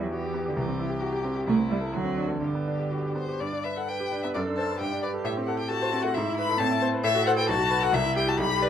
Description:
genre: quick classical-period movement for piano trio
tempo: 133 BPM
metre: 2/4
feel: rubato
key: G major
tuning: A4 = 444 Hz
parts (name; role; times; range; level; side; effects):
- rich cello; second line; 0.0-8.7 s; D3 to B4; -30 LUFS; right 4 dB; none
- bright concert grand piano; accompaniment; 0.0-8.7 s; B1 to D5; -28 LUFS; equal; none
- clear violin; melody; 0.1-8.7 s; E4 to B5; -29 LUFS; left 7 dB; none
room: light reverb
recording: dark, warm production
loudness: -24 LUFS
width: side -9 dB against mid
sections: 0.0-3.4 A section; 3.4-8.7 B section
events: none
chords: 0.0 Em; 0.6 C; 1.5 Am/C; 1.9 D7; 2.4 G; 4.3 D7/F#; 4.8 G; 5.2 Am; 6.1 E/G#; 6.6 Am; 7.0 F#m7b5/A; 7.5 B5; 7.9 C

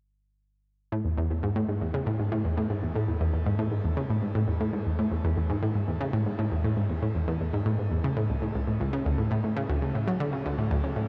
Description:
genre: ambient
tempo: 118 BPM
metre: 4/4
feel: straight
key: A major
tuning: A4 = 438 Hz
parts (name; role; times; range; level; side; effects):
- analog pluck; solo; 0.9-11.1 s; C#2 to F#3; -28 LUFS; equal; chorus, tape echo
room: wet shimmer reverb, RT60 8.9 s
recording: dark, warm production, faint mains hum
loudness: -28 LUFS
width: mono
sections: 0.9-11.1 A section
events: none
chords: none

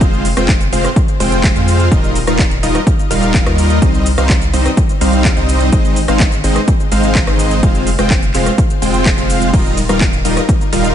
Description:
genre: EDM, festival progressive house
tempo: 126 BPM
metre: 4/4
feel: straight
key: unclear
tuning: A4 = 440 Hz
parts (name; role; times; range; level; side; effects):
- dense compressed supersaw; riff; 0.0-10.9 s; G3 to G5; -15 LUFS; equal; sidechain pumping, ping-pong delay
- saturated sub bass; bass; 0.0-10.9 s; Eb1 to F2; -17 LUFS; equal; sidechain pumping
- electronic kick drum; drums; 0.0-10.6 s; none; -14 LUFS; equal; overdrive
- house drum kit; drums; 0.0-10.9 s; crash cymbal, handclaps, hi-hat, ride cymbal, rim click, shaker; -21 LUFS; equal; overdrive
room: light reverb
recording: nothing above 10.5 kHz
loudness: -10 LUFS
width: side -10 dB against mid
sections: 0.0-10.9 A section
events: none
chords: 0.0 Fm; 1.9 Ebadd9; 3.8 Cm; 5.7 Ab; 7.6 Fm; 9.5 Ebadd9

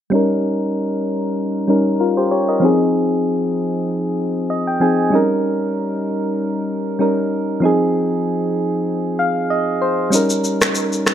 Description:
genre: afrobeats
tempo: 96 BPM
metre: 4/4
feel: swing 55% on 16ths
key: unclear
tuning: A4 = 441 Hz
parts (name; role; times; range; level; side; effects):
- soft electric-piano-like synth keys; accompaniment; 0.1-11.1 s; F3 to Ab5; -16 LUFS; equal; chorus, low-pass filter
- electronic shaker, rim click and finger snaps; drums; 10.1-11.1 s; none; -18 LUFS; equal; none
room: light reverb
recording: none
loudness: -16 LUFS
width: side -10 dB against mid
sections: 0.1-11.1 A section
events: filter sweep on synth keys 0.1-11.1; synth keys fill 4.2-5.1, 8.9-10.1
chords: 0.1 Eb7; 2.6 Ab6; 5.1 Eb7; 7.6 Ab6; 10.1 Eb7

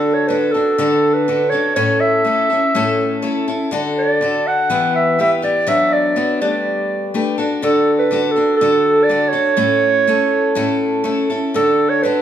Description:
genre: rock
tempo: 123 BPM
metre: 4/4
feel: straight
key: D major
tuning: A4 = 441 Hz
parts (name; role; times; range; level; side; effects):
- dark clarinet; melody; 0.0-12.2 s; A4 to F#5; -16 LUFS; right 2 dB; tape echo
- picked steel-string acoustic guitar; accompaniment; 0.0-12.2 s; A2 to C#5; -18 LUFS; left 3 dB; none
room: moderate large studio reverb, RT60 1.2 s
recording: studio reverb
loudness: -14 LUFS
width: side -10 dB against mid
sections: 0.0-11.6 A section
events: none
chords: 0.0 D; 1.8 A; 3.7 D; 4.7 Em; 5.7 Bmadd9/F#; 6.4 Gadd9; 7.4 D; 9.6 A; 11.6 D

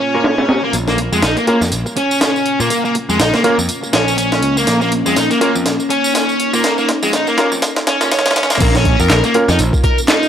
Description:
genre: breakbeat, breaks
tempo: 122 BPM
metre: 4/4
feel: swing 57% on 16ths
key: Bb minor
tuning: A4 = 440 Hz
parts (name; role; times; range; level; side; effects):
- deep dark ambient pad; sustained chords; 0.0-10.3 s; Bb3 to F4; -24 LUFS; left 1 dB; chorus, built-in reverb, sidechain pumping
- fuzz guitar; riff; 0.0-10.3 s; Ab3 to Bb4; -16 LUFS; equal; distortion, vintage 12-bit sampler grit, low-pass filter, tape echo
- breakbeat sampler-style drum kit; drums; 0.0-10.2 s; crash cymbal, hi-hat, kick drum, snare drum; -17 LUFS; equal; high-pass filter on hats, low-pass filter on hats, studio reverb, high-pass filter on snare, low-pass filter on snare, high-pass filter on kick, low-pass filter on kick, high-pass filter on cymbals, low-pass filter on cymbals
- bright grand piano; stabs; 0.1-9.4 s; Bb3 to Bb4; -19 LUFS; right 1 dB; low-pass filter, tape echo
- modern bright picked electric bass; bass; 0.7-9.7 s; Bb1 to Bb2; -19 LUFS; equal; low-pass filter
- electronic tambourine and handclaps; drums; 0.7-10.3 s; none; -24 LUFS; right 2 dB; low-pass filter on perc, studio reverb, low-pass filter on snare
room: light reverb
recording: dry, gritty hardware recording, high-pass filter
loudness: -12 LUFS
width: side -9 dB against mid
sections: 0.7-8.6 A section; 8.6-10.3 B section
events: build-up 0.7-8.6; filter sweep on grand piano 0.7-8.6; filter sweep on ambient pad 0.7-8.6; drum fill 4.7-8.6; drop 8.6-10.3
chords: 0.0 Bbm

